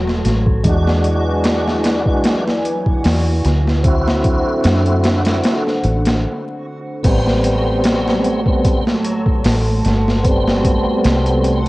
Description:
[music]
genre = trip hop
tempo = 75 BPM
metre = 4/4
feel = swing 54% on 16ths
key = A dorian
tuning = A4 = 440 Hz
[part]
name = dark analog pad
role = sustained chords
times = 0.0-11.7 s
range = A3 to C6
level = -22 LUFS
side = right 1 dB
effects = chorus, vintage 12-bit sampler grit, cassette tape
[part]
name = deep dub fingered electric bass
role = bass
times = 0.0-11.7 s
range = E1 to F#2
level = -18 LUFS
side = equal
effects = tube saturation
[part]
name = backwards swelling texture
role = texture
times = 0.0-11.7 s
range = F#3 to F#4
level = -29 LUFS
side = left 1 dB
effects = built-in reverb, cassette tape
[part]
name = boom bap sampler-style drum kit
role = drums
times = 0.1-11.7 s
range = crash cymbal, hi-hat, kick drum, snare drum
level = -18 LUFS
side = equal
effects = overdrive, cassette tape
[part]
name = tonewheel organ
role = accompaniment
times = 0.6-11.6 s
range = G3 to F#4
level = -19 LUFS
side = equal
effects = chorus vibrato, fast rotary speaker, harmonic tremolo, vintage 12-bit sampler grit, cassette tape, tape echo
[sound]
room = light reverb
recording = home recording on cassette, vinyl crackle, nothing above 10.9 kHz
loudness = -13 LUFS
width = side -20 dB against mid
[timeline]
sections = 0.0-7.0 A section; 7.0-11.7 B section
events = break 6.2-7.0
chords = 0.0 Am; 0.6 E7; 3.8 D7; 7.0 Am7

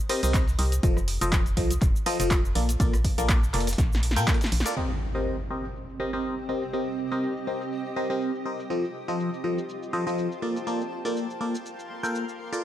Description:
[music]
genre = piano house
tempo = 122 BPM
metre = 4/4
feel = swing 55% on 16ths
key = C dorian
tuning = A4 = 439 Hz
[part]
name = barking FM electric piano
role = riff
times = 0.1-12.6 s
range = F3 to G5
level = -28 LUFS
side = left 1 dB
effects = phaser, sidechain pumping, low-pass filter, tape echo
[part]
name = dusty soul sampler-style drum kit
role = drums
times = 0.1-4.6 s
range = hi-hat, snare drum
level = -41 LUFS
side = left 1 dB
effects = none
[part]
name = punchy analog drum machine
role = drums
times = 0.1-12.6 s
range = crash cymbal, handclaps, hi-hat, rim click, shaker, snare drum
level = -32 LUFS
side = equal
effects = low-pass filter on perc, low-pass filter on snare, low-pass filter on hats, low-pass filter on cymbals, low-pass filter on room
[part]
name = organ-like FM bass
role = bass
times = 0.2-4.6 s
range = F1 to Bb2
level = -26 LUFS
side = equal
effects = sidechain pumping
[part]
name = electronic kick drum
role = drums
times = 0.3-4.4 s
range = none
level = -24 LUFS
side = equal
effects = none
[part]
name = impact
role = sound effects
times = 4.8-6.7 s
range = none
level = -34 LUFS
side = equal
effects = none
[part]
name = granular cloud pad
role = texture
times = 5.8-12.6 s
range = C4 to D6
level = -34 LUFS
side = right 2 dB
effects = built-in reverb, sidechain pumping
[sound]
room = digital ambience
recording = none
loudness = -24 LUFS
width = side -12 dB against mid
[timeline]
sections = 0.0-4.8 A section; 4.8-12.6 B section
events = drum fill 3.8-4.8; band accent 4.6; impact 4.8-6.7; filter sweep on drum 4.8-12.6; filter sweep on FM electric piano 4.8-12.6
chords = 0.0 Cm7; 0.8 F7; 2.6 Bbmaj7; 4.8 Cm7; 8.7 F7; 10.4 Bbmaj7

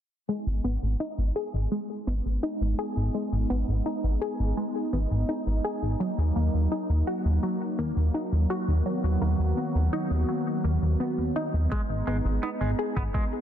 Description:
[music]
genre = synthwave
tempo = 84 BPM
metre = 4/4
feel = straight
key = G# minor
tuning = A4 = 444 Hz
[part]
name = brassy analog pad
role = sustained chords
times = 0.3-13.4 s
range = D#3 to F#4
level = -31 LUFS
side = right 1 dB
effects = chorus, sidechain pumping
[part]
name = wide unison pluck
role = arpeggios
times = 0.3-13.4 s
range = F#3 to G#4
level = -32 LUFS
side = left 2 dB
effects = ping-pong delay
[part]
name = chorused synth bass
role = bass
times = 0.5-13.1 s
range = G#1 to D#2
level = -25 LUFS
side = equal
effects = tube saturation, sidechain pumping
[part]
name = clean electric guitar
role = riff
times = 11.7-13.2 s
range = G#3 to B3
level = -36 LUFS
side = right 2 dB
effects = lush chorus, vintage 12-bit sampler grit, ping-pong delay
[part]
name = electronic kick drum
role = drums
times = 11.7-13.3 s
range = none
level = -28 LUFS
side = equal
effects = none
[sound]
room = light reverb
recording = dense, heavily limited modern master, low-pass filter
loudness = -25 LUFS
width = side -10 dB against mid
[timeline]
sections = 0.3-13.4 A section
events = filter sweep on analog synth bass 0.3-13.4; filter sweep on analog synth pad 0.3-13.4; filter sweep on synth arpeggio sound 0.3-13.4; filter sweep 0.3-13.4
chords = 0.3 G#m; 6.0 D#m; 8.9 Bmaj7/D#; 11.7 G#m

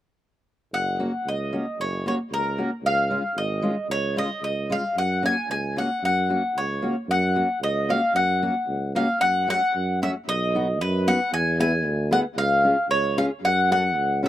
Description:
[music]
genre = alpine folk, alpine dance band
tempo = 113 BPM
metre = 2/4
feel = rubato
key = F# major, F# minor from 9.2 s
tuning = A4 = 440 Hz
[part]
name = mandolin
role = melody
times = 0.7-14.3 s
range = A#4 to G#5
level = -23 LUFS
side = equal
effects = slapback echo
[part]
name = warm tuba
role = bass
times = 0.7-14.3 s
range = F#1 to F#2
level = -27 LUFS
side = right 1 dB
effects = none
[part]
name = fingerpicked steel-string acoustic guitar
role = accompaniment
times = 1.0-14.3 s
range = G#3 to A4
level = -28 LUFS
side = left 1 dB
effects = slapback echo
[sound]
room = little or no reverb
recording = recorded outdoors, with no room sound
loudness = -21 LUFS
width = side -12 dB against mid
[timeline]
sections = 0.7-9.2 A section; 9.2-14.3 B section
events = none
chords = 0.7 F#; 2.8 C#; 5.0 F#; 9.2 F#m; 10.3 B; 11.3 E; 12.4 C#; 13.4 F#m

